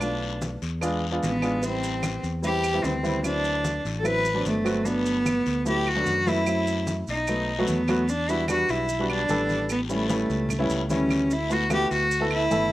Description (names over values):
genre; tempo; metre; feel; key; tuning
Afro-Cuban jazz; 149 BPM; 4/4; straight; G major, E minor from 8.1 s; A4 = 438 Hz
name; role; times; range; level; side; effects
rich cello; melody; 0.0-12.7 s; A3 to B4; -25 LUFS; equal; none
warm baby grand piano; accompaniment; 0.0-12.7 s; F#3 to B4; -28 LUFS; equal; none
fingered electric bass; bass; 0.0-12.7 s; G1 to F#2; -30 LUFS; equal; none
claves; percussion; 0.0-12.5 s; none; -36 LUFS; right 7 dB; none
congas; percussion; 0.0-12.7 s; none; -34 LUFS; left 1 dB; none
guiro; percussion; 0.0-12.7 s; none; -38 LUFS; left 8 dB; none
maracas; percussion; 0.0-12.7 s; none; -42 LUFS; right 5 dB; none
room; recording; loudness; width
little or no reverb; recorded outdoors, with no room sound; -22 LUFS; side -16 dB against mid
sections
0.0-8.1 A section; 8.1-12.7 B section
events
none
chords
0.0 Bm7b5; 0.8 E7b9; 1.6 Am9; 3.2 D13; 4.9 Gmaj7; 6.5 F#m7b5; 7.3 B7; 8.1 Em7; 9.7 A7; 11.3 D69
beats
| 0.02 0.42 0.82 1.23 | 1.63 2.03 2.44 2.84 | 3.24 3.64 4.05 4.45 | 4.86 5.26 5.66 6.07 | 6.47 6.87 7.28 7.68 | 8.08 8.49 8.89 9.29 | 9.70 10.10 10.50 10.90 | 11.30 11.71 12.11 12.51